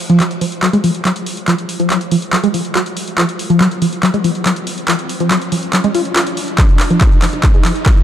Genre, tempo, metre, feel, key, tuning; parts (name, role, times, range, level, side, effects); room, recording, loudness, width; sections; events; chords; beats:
driving peak-time techno; 141 BPM; 4/4; straight; F phrygian; A4 = 440 Hz
riser; sound effects; 0.0-8.0 s; -29 LUFS; right 2 dB
tight sequenced synth; riff; 0.1-7.9 s; F3 to F4; -15 LUFS; equal; chorus, phaser, sidechain pumping, dub echo
techno drum kit; drums; 0.1-8.0 s; handclaps, hi-hat, toms; -19 LUFS; equal; overdrive, high-pass filter on snare, sidechain pumping on hats, high-pass filter on hats, sidechain pumping on toms, high-pass filter on toms
electronic kick drum; drums; 6.6-7.9 s; -10 LUFS; equal
moderate huge ambient reverb, RT60 7.4 s; dark, warm production; -12 LUFS; side -10 dB against mid
0.0-8.0 A section
build-up 0.0-8.0; drum fill 0.0-8.0; riser 0.0-8.0
0.20 0.63 1.05 | 1.48 1.90 2.33 2.75 | 3.18 3.60 4.03 4.46 | 4.88 5.31 5.73 6.16 | 6.58 7.01 7.43 7.86